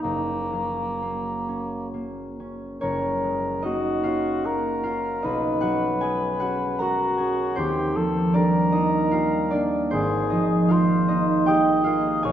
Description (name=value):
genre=classical, impressionist duo for cor anglais and harp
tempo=60-80 BPM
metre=3/4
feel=rubato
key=F# major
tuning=A4 = 441 Hz
part: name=dark cor anglais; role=melody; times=0.0-12.3 s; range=A#3 to D#5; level=-26 LUFS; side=left 2 dB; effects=none
part: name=concert harp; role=accompaniment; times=0.0-12.3 s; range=F#1 to A#5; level=-23 LUFS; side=right 1 dB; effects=none
room=wet scoring stage reverb, RT60 1.4 s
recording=nothing above 10.8 kHz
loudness=-21 LUFS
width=side -10 dB against mid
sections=0.0-2.8 A section; 2.8-12.3 A section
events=none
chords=0.0 F#; 2.8 F#69; 5.2 B69; 7.6 D#69; 9.9 G#69